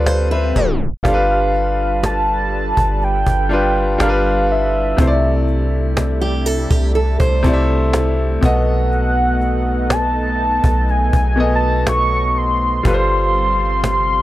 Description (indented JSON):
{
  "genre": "contemporary R&B",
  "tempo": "61 BPM",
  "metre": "4/4",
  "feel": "straight",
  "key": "unclear",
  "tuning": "A4 = 439 Hz",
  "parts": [
    { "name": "clear grand piano", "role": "accompaniment", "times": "0.0-14.2 s", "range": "B2 to F5", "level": "-20 LUFS", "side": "left 1 dB", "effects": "none" },
    { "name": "lush unison pad", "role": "sustained chords", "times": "0.0-14.2 s", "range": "C3 to B4", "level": "-26 LUFS", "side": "right 1 dB", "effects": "chorus" },
    { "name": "fingerpicked steel-string acoustic guitar", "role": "arpeggios", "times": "0.0-8.4 s", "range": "G4 to C5", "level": "-23 LUFS", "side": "right 2 dB", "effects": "tape echo" },
    { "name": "soft 808-style bass", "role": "bass", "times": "0.0-14.2 s", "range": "G1 to D2", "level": "-18 LUFS", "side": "equal", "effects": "none" },
    { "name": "swell", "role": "sound effects", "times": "0.0-1.1 s", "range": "none", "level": "-26 LUFS", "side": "left 5 dB", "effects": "none" },
    { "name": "cajon", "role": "drums", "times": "0.1-14.1 s", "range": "none", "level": "-20 LUFS", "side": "equal", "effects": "none" },
    { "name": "warm velvety synth lead", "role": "melody", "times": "0.6-14.2 s", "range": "E5 to Db6", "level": "-19 LUFS", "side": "equal", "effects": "chorus" }
  ],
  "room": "small room ambience",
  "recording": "dry, gritty hardware recording, tape stop",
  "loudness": "-14 LUFS",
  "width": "side -15 dB against mid",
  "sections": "0.0-1.0 A section; 1.0-14.2 B section",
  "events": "swell 0.0-1.0; tape stop 0.6-1.0",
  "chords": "0.0 G9sus4; 1.0 G7; 5.0 C69; 8.4 B7; 12.9 G9sus4"
}